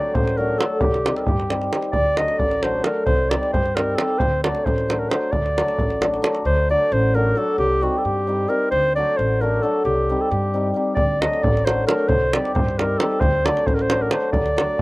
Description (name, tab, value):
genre	balkan folk, Balkan wedding band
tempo	266 BPM (eighths)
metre	5/8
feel	straight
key	D phrygian dominant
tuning	A4 = 440 Hz
part	dark clarinet	melody	0.0-14.8 s	F#4 to Eb5	-22 LUFS	equal	none
part	hammered dulcimer	accompaniment	0.0-14.8 s	F#3 to G4	-23 LUFS	left 1 dB	slapback echo
part	upright bass	bass	0.1-14.8 s	A1 to G2	-25 LUFS	equal	none
part	davul	percussion	0.1-6.4, 11.0-14.8 s	none	-23 LUFS	right 1 dB	none
room	little or no reverb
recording	recorded outdoors, with no room sound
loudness	-18 LUFS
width	side -21 dB against mid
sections	0.0-6.5 A section; 6.5-14.8 A section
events	none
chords	0.0 D; 0.8 Cm; 1.9 D; 3.1 Cm; 4.2 D; 7.6 Cm; 8.7 D; 9.8 Cm; 11.0 D; 12.1 Cm; 13.2 D